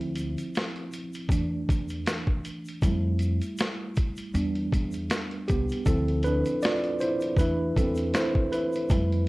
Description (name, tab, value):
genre	lo-fi hip hop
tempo	79 BPM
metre	4/4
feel	swing 55% on 16ths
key	D dorian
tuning	A4 = 442 Hz
part	mellow tine electric piano	accompaniment	0.0-9.3 s	E3 to D5	-28 LUFS	right 1 dB	medium stereo tremolo, cassette tape, low-pass filter
part	upright bass	bass	0.0-9.3 s	C2 to F2	-29 LUFS	equal	none
part	boom bap sampler-style drum kit	drums	0.0-9.3 s	hi-hat, kick drum, snare drum	-28 LUFS	equal	none
part	egg shaker	percussion	0.2-9.1 s	none	-53 LUFS	left 2 dB	none
room	moderate studio reverb, RT60 0.5 s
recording	worn, warbling old tape, cassette tape, warbly pitch drift, lossy compression artefacts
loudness	-24 LUFS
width	side -21 dB against mid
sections	0.0-9.3 A section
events	tine electric piano solo 0.0-9.3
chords	0.0 Dm7; 1.3 E7sus4; 2.8 Fmaj9; 4.3 Em7; 5.9 Dm7; 7.4 C6/E